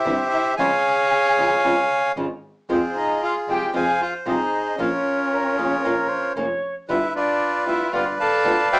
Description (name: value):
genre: tango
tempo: 114 BPM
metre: 4/4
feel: rubato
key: F minor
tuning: A4 = 439 Hz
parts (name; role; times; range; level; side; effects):
- bandoneon; melody; 0.0-8.8 s; F4 to A5; -20 LUFS; equal; none
- dark violin; second line; 0.0-8.8 s; C4 to A4; -26 LUFS; left 1 dB; none
- flamenco guitar; accompaniment; 0.0-8.5 s; C3 to F4; -24 LUFS; equal; none
- warm double bass; bass; 0.1-8.7 s; F1 to F2; -36 LUFS; equal; none
- silver concert flute; second line; 5.3-6.7 s; Ab4 to Db5; -26 LUFS; right 1 dB; none
room: moderate studio reverb, RT60 0.5 s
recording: small speaker sound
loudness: -18 LUFS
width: side -24 dB against mid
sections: 0.0-8.8 A section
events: none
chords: 0.0 C; 0.6 Db; 2.7 Fm; 4.8 Bbm; 6.9 G7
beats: 0.06 | 0.58 1.10 1.63 2.16 | 2.68 3.21 3.74 4.26 | 4.79 5.31 5.83 6.36 | 6.88 7.41 7.93 8.46